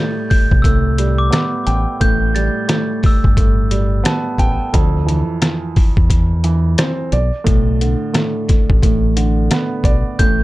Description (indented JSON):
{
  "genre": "hip hop, boom-bap hip-hop",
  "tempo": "88 BPM",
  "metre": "4/4",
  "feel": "swing 58% on 16ths",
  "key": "unclear",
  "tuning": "A4 = 440 Hz",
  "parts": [
    { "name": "glockenspiel with rubber mallets", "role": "melody", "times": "0.0-4.4, 10.2-10.4 s", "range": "A5 to A6", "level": "-23 LUFS", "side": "equal", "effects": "tape echo" },
    { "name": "dark baby grand piano", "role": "accompaniment", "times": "0.0-10.4 s", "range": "F2 to G5", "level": "-20 LUFS", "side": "right 2 dB", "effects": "none" },
    { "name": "trip hop sampler-style drum kit", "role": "drums", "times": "0.3-10.4 s", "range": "hi-hat, kick drum, rim click, snare drum", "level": "-15 LUFS", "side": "equal", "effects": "none" },
    { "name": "deep dub fingered electric bass", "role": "bass", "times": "0.5-10.4 s", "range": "G1 to E2", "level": "-16 LUFS", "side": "equal", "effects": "none" }
  ],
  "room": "little or no reverb",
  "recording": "dark, warm production",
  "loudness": "-13 LUFS",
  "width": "side -18 dB against mid",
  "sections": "0.0-10.4 A section",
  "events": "none",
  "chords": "0.0 Am9; 4.7 Dm9; 7.1 Bm7"
}